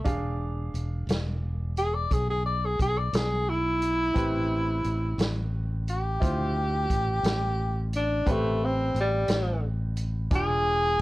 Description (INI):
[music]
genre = slow blues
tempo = 58 BPM (dotted quarters)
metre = 12/8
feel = straight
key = A minor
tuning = A4 = 440 Hz
[part]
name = clear tenor saxophone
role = melody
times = 0.0-11.0 s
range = G3 to D5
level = -27 LUFS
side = equal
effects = none
[part]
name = bright upright piano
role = accompaniment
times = 0.0-11.0 s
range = C4 to G#5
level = -36 LUFS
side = right 1 dB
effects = none
[part]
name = fingered electric bass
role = bass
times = 0.1-11.0 s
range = E1 to D2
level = -29 LUFS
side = equal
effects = none
[part]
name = vintage drum kit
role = drums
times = 0.1-11.0 s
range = hi-hat, kick drum, snare drum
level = -29 LUFS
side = equal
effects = none
[sound]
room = light reverb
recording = worn, warbling old tape, cassette tape, warbly pitch drift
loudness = -24 LUFS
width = side -18 dB against mid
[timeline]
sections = 0.0-11.0 A section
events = tenor saxophone solo 0.0-11.0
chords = 0.1 E7b9; 4.2 Am7; 6.2 Dm7; 8.3 Am7; 10.3 E7b9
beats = | 0.06 1.08 2.11 3.13 | 4.16 5.18 6.21 7.24 | 8.26 9.29 10.31